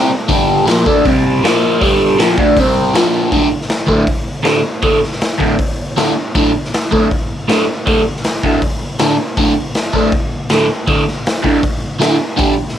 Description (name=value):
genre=garage rock duo or trio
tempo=159 BPM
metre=4/4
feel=straight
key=unclear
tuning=A4 = 440 Hz
part: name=overdriven electric guitar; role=riff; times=0.0-12.5 s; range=D2 to D4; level=-12 LUFS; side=equal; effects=phaser, cassette tape
part: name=raw garage drum kit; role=drums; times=0.3-12.7 s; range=hi-hat, kick drum, snare drum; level=-17 LUFS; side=equal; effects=cassette tape
room=light reverb, studio reverb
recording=home recording on cassette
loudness=-12 LUFS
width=side -10 dB against mid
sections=0.0-3.3 A section; 3.3-12.8 B section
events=none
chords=0.3 G5; 1.0 C5; 1.4 Bb5; 1.8 G5; 2.6 C5; 2.9 Bb5; 3.3 D5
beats=| 0.29 0.67 1.05 1.42 | 1.80 2.18 2.56 2.94 | 3.31 3.69 4.07 4.45 | 4.83 5.21 5.59 5.97 | 6.35 6.72 7.10 7.48 | 7.86 8.24 8.62 8.99 | 9.37 9.75 10.13 10.51 | 10.88 11.26 11.64 12.02 | 12.39